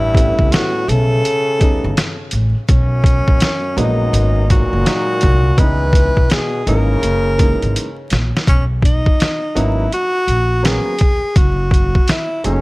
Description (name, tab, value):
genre	hip hop, jazz-hop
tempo	83 BPM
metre	4/4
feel	swing 65% on 16ths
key	B major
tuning	A4 = 437 Hz
part	breathy tenor saxophone	melody	0.0-12.6 s	C#4 to B4	-19 LUFS	equal	none
part	warm trombone	second line	0.0-8.1 s	F#2 to E3	-25 LUFS	left 2 dB	tape echo
part	upright bass	bass	0.0-12.6 s	F#1 to C#2	-17 LUFS	equal	none
part	trip hop sampler-style drum kit	drums	0.1-12.6 s	hi-hat, kick drum, snare drum	-14 LUFS	equal	none
part	warm upright piano	accompaniment	0.2-12.6 s	E3 to G#4	-22 LUFS	right 1 dB	none
room	small room ambience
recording	vinyl crackle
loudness	-13 LUFS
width	side -22 dB against mid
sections	0.0-8.5 A section; 8.5-12.6 B section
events	drum fill 7.7-8.5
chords	0.0 A9; 2.7 Bmaj9; 4.1 G#m9; 5.6 C#m7; 7.0 F#13; 8.5 Bmaj9; 11.4 F#m